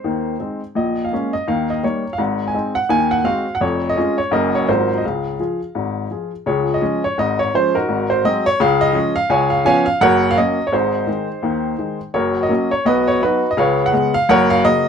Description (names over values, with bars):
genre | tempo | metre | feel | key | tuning
jazz, stride piano | 169 BPM | 4/4 | swing 59% on 8ths | Db major | A4 = 440 Hz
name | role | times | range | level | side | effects
clear upright piano | solo | 0.0-14.9 s | F1 to Ab5 | -15 LUFS | equal | none
room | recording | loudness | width
moderate studio ambience, RT60 0.5 s | none | -15 LUFS | side -7 dB against mid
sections
0.0-6.5 A section; 6.5-14.9 A section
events
none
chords
0.0 Ab; 0.8 Bbm7; 1.5 Eb; 2.2 Ab; 2.9 Ab7/Eb; 3.6 Db/F; 4.3 Gb; 4.7 Ab13; 5.0 Db; 7.9 Ab7; 8.6 Db; 9.3 Db7; 10.0 Gb; 10.7 Ab; 12.1 F#; 12.9 B; 13.6 C#5; 14.3 F#